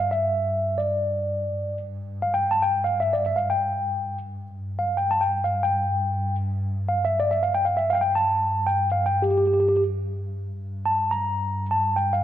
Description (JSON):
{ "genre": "Arabic maqam ensemble", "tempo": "free time", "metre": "none", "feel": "none", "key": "G minor", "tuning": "A4 = 444 Hz", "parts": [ { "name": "mellow tine electric piano", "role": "melody", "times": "0.0-12.2 s", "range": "G4 to Bb5", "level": "-22 LUFS", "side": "equal", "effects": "slow stereo tremolo" }, { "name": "warm double bass", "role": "drone", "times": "0.0-12.2 s", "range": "G2", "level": "-29 LUFS", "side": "equal", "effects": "none" } ], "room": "moderate recital hall reverb, RT60 1.5 s", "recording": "none", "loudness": "-21 LUFS", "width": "side -11 dB against mid", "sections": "0.0-10.6 A section; 10.6-12.2 A section", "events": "none", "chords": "none" }